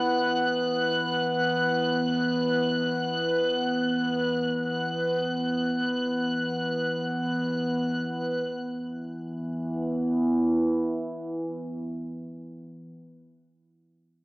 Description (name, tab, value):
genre	ambient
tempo	free time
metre	none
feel	none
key	unclear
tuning	A4 = 441 Hz
part	analog drone	drone	0.0-12.9 s	E3 to B3	-26 LUFS	equal	chorus
part	rich studio violin section	texture	0.0-8.5 s	F#6	-30 LUFS	equal	shimmer reverb
room	wet concert hall reverb, RT60 2.1 s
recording	worn, warbling old tape, cassette tape, warbly pitch drift, small speaker sound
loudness	-25 LUFS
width	side -22 dB against mid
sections	0.0-8.5 A section; 8.5-12.6 B section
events	none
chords	0.0 E5